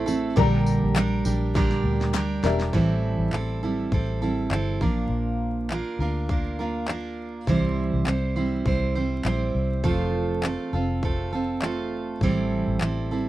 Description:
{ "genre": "acoustic pop", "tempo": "101 BPM", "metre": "4/4", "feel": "swing 55% on 16ths", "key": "unclear", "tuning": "A4 = 440 Hz", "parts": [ { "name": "felt-muted upright piano", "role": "accompaniment", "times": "0.0-2.8 s", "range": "G4 to Bb5", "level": "-29 LUFS", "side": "left 12 dB", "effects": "none" }, { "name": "picked steel-string acoustic guitar", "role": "accompaniment", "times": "0.0-13.3 s", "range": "A2 to C5", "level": "-25 LUFS", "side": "right 2 dB", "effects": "none" }, { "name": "vintage muted fingered electric bass", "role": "bass", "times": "0.0-13.3 s", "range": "E1 to D2", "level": "-28 LUFS", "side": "left 1 dB", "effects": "none" }, { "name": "pop drum kit", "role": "drums", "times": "0.1-13.0 s", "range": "handclaps, kick drum, snare drum, tambourine", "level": "-28 LUFS", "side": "left 1 dB", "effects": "none" }, { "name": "group handclap", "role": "percussion", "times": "1.0-2.3 s", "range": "none", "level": "-32 LUFS", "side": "left 15 dB", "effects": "none" } ], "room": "little or no reverb", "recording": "dry, close 1970s-style studio recording, vinyl crackle", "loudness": "-22 LUFS", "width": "side -15 dB against mid", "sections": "0.0-2.7 A section; 2.7-13.3 B section", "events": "drum fill 1.5-2.7", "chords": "0.4 Gm/Bb; 2.7 Am7; 4.8 Bb; 7.5 C; 9.8 F; 12.2 Am7", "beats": "| 0.36 0.96 1.55 2.14 | 2.73 3.32 3.92 4.51 | 5.10 5.69 6.29 6.88 | 7.47 8.06 8.66 9.25 | 9.84 10.43 11.03 11.62 | 12.21 12.80" }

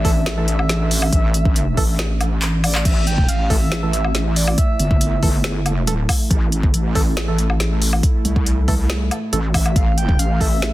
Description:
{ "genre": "deep dubstep", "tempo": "139 BPM", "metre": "4/4", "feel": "half-time", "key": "A minor", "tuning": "A4 = 439 Hz", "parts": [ { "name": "breathy flute-like synth lead", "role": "melody", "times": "0.0-5.4, 9.5-10.7 s", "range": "D5 to G5", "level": "-27 LUFS", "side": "right 1 dB", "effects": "lush chorus, dub echo" }, { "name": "dark analog pad", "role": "sustained chords", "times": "0.0-10.7 s", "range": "A3 to A4", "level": "-29 LUFS", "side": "right 1 dB", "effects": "chorus" }, { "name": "percussive organ stab", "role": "stabs", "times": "0.0-10.5 s", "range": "E3 to A4", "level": "-28 LUFS", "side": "right 3 dB", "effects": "chorus, dub echo" }, { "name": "wobble bass", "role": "bass", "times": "0.0-10.7 s", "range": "G1 to C2", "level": "-19 LUFS", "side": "equal", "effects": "chorus" }, { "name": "deep house drum kit", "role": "drums", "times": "0.0-10.7 s", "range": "crash cymbal, handclaps, hi-hat, snare drum, woodblock", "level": "-23 LUFS", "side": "left 1 dB", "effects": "none" }, { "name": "electronic kick drum", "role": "drums", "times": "0.0-10.5 s", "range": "none", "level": "-18 LUFS", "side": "equal", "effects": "none" } ], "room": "little or no reverb", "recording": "dense, heavily limited modern master", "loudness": "-16 LUFS", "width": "side -16 dB against mid", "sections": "0.0-10.7 A section", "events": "kick drops out 2.0-2.9; drum fill 2.4-2.9", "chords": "0.0 A5", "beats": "0.26 0.69 | 1.13 1.56 1.99 2.42 | 2.85 3.29 3.72 4.15 | 4.58 5.01 5.44 5.88 | 6.31 6.74 7.17 7.60 | 8.03 8.46 8.90 9.33 | 9.76 10.19 10.62" }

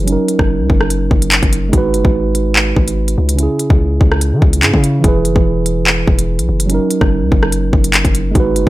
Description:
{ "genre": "hip hop, drill", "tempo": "145 BPM", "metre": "4/4", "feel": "half-time", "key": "unclear", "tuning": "A4 = 444 Hz", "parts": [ { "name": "mellow tine electric piano", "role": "accompaniment", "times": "0.0-8.7 s", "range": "C#3 to B4", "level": "-17 LUFS", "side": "right 3 dB", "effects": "low-pass filter" }, { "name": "long sustained 808-style bass", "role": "bass", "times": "0.0-8.7 s", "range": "E1 to E3", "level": "-16 LUFS", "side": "equal", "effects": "none" }, { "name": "drill drum kit", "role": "drums", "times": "0.1-8.7 s", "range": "handclaps, hi-hat, kick drum, rim click", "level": "-13 LUFS", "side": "equal", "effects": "none" } ], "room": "digital ambience", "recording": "none", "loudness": "-11 LUFS", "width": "side -16 dB against mid", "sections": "0.0-8.7 A section", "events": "none", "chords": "0.1 F#6; 1.7 G#m7; 3.4 C#m; 5.0 E; 6.7 F#6", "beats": "| 0.07 0.49 0.90 1.32 | 1.73 2.14 2.56 2.97 | 3.39 3.80 4.21 4.63 | 5.04 5.46 5.87 6.28 | 6.70 7.11 7.52 7.94 | 8.35" }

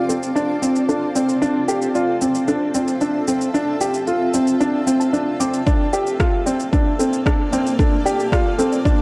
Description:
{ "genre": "piano and strings electronica", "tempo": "113 BPM", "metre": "4/4", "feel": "straight", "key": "D minor", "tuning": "A4 = 441 Hz", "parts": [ { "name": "granular cloud pad", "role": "sustained chords", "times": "0.0-9.0 s", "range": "Bb3 to E5", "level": "-27 LUFS", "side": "equal", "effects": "built-in reverb" }, { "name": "soft round pluck", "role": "arpeggios", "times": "0.1-8.9 s", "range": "A4 to D6", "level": "-31 LUFS", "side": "equal", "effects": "chorus, cassette tape, sidechain pumping, tape echo" }, { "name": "dark grand piano", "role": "riff", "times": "0.1-9.0 s", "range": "C4 to G4", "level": "-22 LUFS", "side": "equal", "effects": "tape echo" }, { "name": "electronic shaker and rim click", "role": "drums", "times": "0.1-9.0 s", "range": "none", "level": "-31 LUFS", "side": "equal", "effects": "overdrive, high-pass filter on perc, high-pass filter on snare" }, { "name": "electronic kick drum", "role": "drums", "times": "5.7-9.0 s", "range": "none", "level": "-20 LUFS", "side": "equal", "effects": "overdrive" } ], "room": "moderate lush hall reverb, RT60 2.2 s", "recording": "dark, warm production", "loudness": "-19 LUFS", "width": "mono", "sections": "0.0-9.0 A section", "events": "build-up 0.0-9.0; filter sweep on synth arpeggio sound 0.0-9.0", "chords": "0.0 Dm7; 5.7 Bbmaj7", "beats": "0.36 0.89 | 1.42 1.95 2.48 3.01 | 3.54 4.08 4.61 5.14 | 5.67 6.20 6.73 7.26 | 7.79 8.32 8.85" }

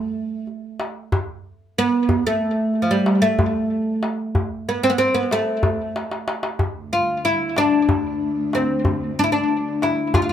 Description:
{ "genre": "Turkish makam ensemble", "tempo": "186 BPM (eighths)", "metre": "7/8", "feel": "straight", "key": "A makam ussak, D makam nihavent from 6.6 s", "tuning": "A4 = 440 Hz", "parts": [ { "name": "oud", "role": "melody", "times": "0.0-10.3 s", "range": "F3 to F4", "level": "-19 LUFS", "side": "equal", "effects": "plate reverb, tape echo" }, { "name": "darbuka", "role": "percussion", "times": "0.5-10.3 s", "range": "none", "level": "-23 LUFS", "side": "left 1 dB", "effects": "none" }, { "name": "warm studio cello section", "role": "drone", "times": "6.6-10.3 s", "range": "D2", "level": "-30 LUFS", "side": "right 2 dB", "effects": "none" } ], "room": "moderate small room reverb, RT60 0.6 s", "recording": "none", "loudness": "-18 LUFS", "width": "side -10 dB against mid", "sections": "0.0-6.6 A section; 6.6-10.3 B section", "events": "drum fill 5.9-6.6", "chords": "none", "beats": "0.15 0.47 0.79 1.11 1.44 1.76 | 2.08 2.40 2.73 3.05 3.37 3.69 4.01 | 4.34 4.66 4.98 5.30 5.63 5.95 6.27 | 6.59 6.92 7.24 7.56 7.88 8.21 8.53 | 8.85 9.17 9.50 9.82 10.14" }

